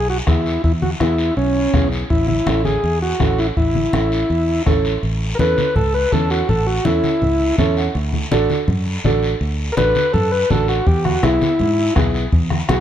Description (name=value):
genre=latin, cumbia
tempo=164 BPM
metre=4/4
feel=straight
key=A major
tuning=A4 = 440 Hz
part: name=overdriven combo organ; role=melody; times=0.0-12.8 s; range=C#4 to B4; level=-19 LUFS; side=left 1 dB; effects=none
part: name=fingered electric bass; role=bass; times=0.0-12.8 s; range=A1 to G#2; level=-20 LUFS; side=equal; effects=none
part: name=congas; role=percussion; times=0.1-12.8 s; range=none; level=-23 LUFS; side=left 2 dB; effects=none
part: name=dark upright piano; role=accompaniment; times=0.3-12.8 s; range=B3 to F#5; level=-23 LUFS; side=right 3 dB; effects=none
part: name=bombo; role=percussion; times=0.3-4.8, 10.9-12.8 s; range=none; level=-20 LUFS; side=left 1 dB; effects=none
part: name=guiro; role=percussion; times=0.3-12.8 s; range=none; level=-30 LUFS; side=left 2 dB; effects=none
room=light reverb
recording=dark, warm production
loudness=-15 LUFS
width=side -10 dB against mid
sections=0.0-5.0 A section; 5.0-12.8 B section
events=transistor combo organ solo 5.0-12.8; upright piano fill 7.4-7.9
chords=0.0 E; 2.1 A; 7.9 D; 10.9 E